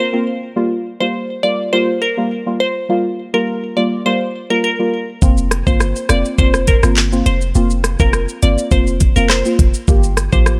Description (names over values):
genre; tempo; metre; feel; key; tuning
dancehall; 103 BPM; 4/4; straight; G minor; A4 = 440 Hz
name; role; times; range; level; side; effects
glassy wavetable pluck; melody; 0.0-10.6 s; Bb4 to D5; -22 LUFS; equal; chorus, delay
downlifter; sound effects; 0.0-0.6 s; none; -54 LUFS; equal; none
deep mellow chord stab; accompaniment; 0.1-10.6 s; G3 to G4; -22 LUFS; equal; chorus
clean 808-style bass; bass; 5.2-10.6 s; F1 to A1; -18 LUFS; equal; none
island pop drum kit; drums; 5.2-10.6 s; handclaps, hi-hat, kick drum, rim click, shaker; -17 LUFS; equal; none
room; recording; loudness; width
little or no reverb; none; -16 LUFS; mono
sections
0.0-10.6 A section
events
none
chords
0.0 Fsus4; 0.6 Gm7; 5.2 Fsus4; 9.9 Gm7